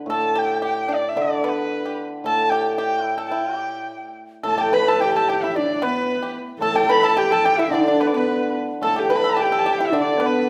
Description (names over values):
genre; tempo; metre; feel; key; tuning
chinese traditional, Chinese chamber ensemble; 110 BPM; 2/4; rubato; G gong mode; A4 = 441 Hz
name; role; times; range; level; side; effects
hammered dulcimer; accompaniment; 0.0-10.5 s; A2 to D3; -27 LUFS; equal; none
dark erhu; melody; 0.1-10.5 s; B4 to B5; -25 LUFS; equal; none
pipa; second line; 0.1-10.5 s; B3 to B4; -28 LUFS; equal; none
large dizi; second line; 4.4-10.5 s; B4 to B5; -28 LUFS; equal; none
dark horsehead fiddle; second line; 4.5-10.5 s; B3 to B4; -26 LUFS; equal; none
room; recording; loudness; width
moderate scoring stage reverb, RT60 1.6 s; none; -20 LUFS; mono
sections
0.0-4.5 A section; 4.5-10.5 B section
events
none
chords
none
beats
| 0.09 0.64 | 1.18 1.73 | 2.26 2.79 | 3.33 3.89 | 4.46 5.01 | 5.56 6.09 | 6.62 7.16 | 7.71 8.26 | 8.82 9.38 | 9.92 10.47